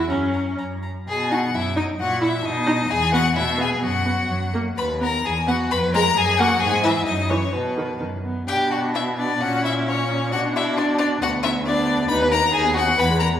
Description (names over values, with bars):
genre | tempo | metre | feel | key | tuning
quick classical-period movement for string quartet | 121-137 BPM | 2/4 | rubato | B major, B minor from 8.5 s | A4 = 441 Hz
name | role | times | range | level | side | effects
rich violin | melody | 0.0-13.3 s | B4 to Cb6 | -23 LUFS | left 4 dB | none
rich viola | accompaniment | 0.0-13.4 s | D#3 to E4 | -25 LUFS | right 1 dB | none
rich cello | bass | 0.0-13.4 s | D2 to B2 | -25 LUFS | equal | none
rich violin | second line | 0.1-13.3 s | B3 to A#5 | -25 LUFS | left 1 dB | none
room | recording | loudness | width
wet recital hall reverb, RT60 1.3 s | heard from further back in the room | -18 LUFS | side -10 dB against mid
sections
0.0-1.1 A section; 1.1-8.5 B section; 8.5-13.4 C section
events
none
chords
0.1 F#; 1.1 B; 2.0 F#7/A#; 2.5 B; 2.9 E5; 3.8 B5/F#; 4.3 F#; 4.8 B/D#; 5.2 E; 5.7 Fdim; 6.2 F#; 6.6 E/G#; 7.1 F#5; 7.5 B; 8.5 Bm; 9.4 A#dim; 10.3 Bm; 11.2 Bm/D; 12.1 B/D#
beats
| 0.10 0.59 | 1.08 1.55 | 2.00 2.45 | 2.90 3.36 | 3.82 4.30 | 4.78 5.24 | 5.70 6.16 | 6.61 7.06 | 7.53 8.00 | 8.49 8.95 | 9.41 9.87 | 10.32 10.77 | 11.22 11.66 | 12.10 12.54 | 12.99